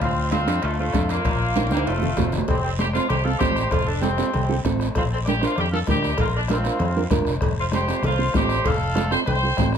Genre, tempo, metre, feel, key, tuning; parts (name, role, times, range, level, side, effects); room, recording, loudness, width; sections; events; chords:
latin, cumbia; 194 BPM; 4/4; straight; F major; A4 = 440 Hz
bright saxophone section; melody; 0.0-9.7 s; A3 to C5; -26 LUFS; left 1 dB; slapback echo
mellow accordion; second line; 0.0-9.7 s; F4 to G5; -29 LUFS; right 1 dB
fingered electric bass; bass; 0.0-9.8 s; F1 to F2; -25 LUFS; equal
bombo; percussion; 0.0-9.8 s; -27 LUFS; left 3 dB
congas; percussion; 0.0-9.7 s; -30 LUFS; left 1 dB
guiro; percussion; 0.0-9.8 s; -39 LUFS; right 6 dB
timbales and cowbell; percussion; 0.0-9.7 s; -31 LUFS; right 4 dB
nylon-string guitar; accompaniment; 0.3-9.8 s; C4 to C5; -26 LUFS; right 6 dB
light reverb; -19 LUFS; side -8 dB against mid
0.0-2.5 A section; 2.5-9.8 B section
drum fill 1.6-2.5
0.0 Dm; 1.2 Bb; 1.9 F; 5.0 Bb; 7.4 Fadd9